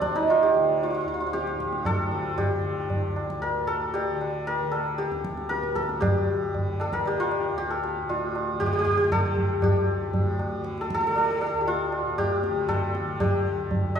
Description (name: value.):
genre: indian classical, Hindustani.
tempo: 116 BPM.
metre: 7/4.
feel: straight.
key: D raga bhairavi.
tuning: A4 = 445 Hz.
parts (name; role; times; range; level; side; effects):
santur; melody; 0.0-14.0 s; D4 to Eb5; -25 LUFS; equal; none.
tanpura; drone; 0.0-14.0 s; D2 to D3; -34 LUFS; equal; none.
tabla; percussion; 0.0-14.0 s; none; -29 LUFS; right 1 dB; none.
room: wet recital hall reverb, RT60 1.6 s.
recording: recorded in a church or concert hall, small room ambience.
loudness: -23 LUFS.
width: side -8 dB against mid.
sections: 0.0-6.0 A section; 6.0-14.0 B section.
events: speeding up 0.0-14.0.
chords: none.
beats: 0.29 0.81 1.34 1.86 | 2.39 2.91 3.43 3.95 4.47 4.99 5.51 | 6.03 6.54 7.06 7.58 8.09 8.61 9.12 | 9.63 10.14 10.65 11.17 11.68 12.18 12.69 | 13.20 13.71.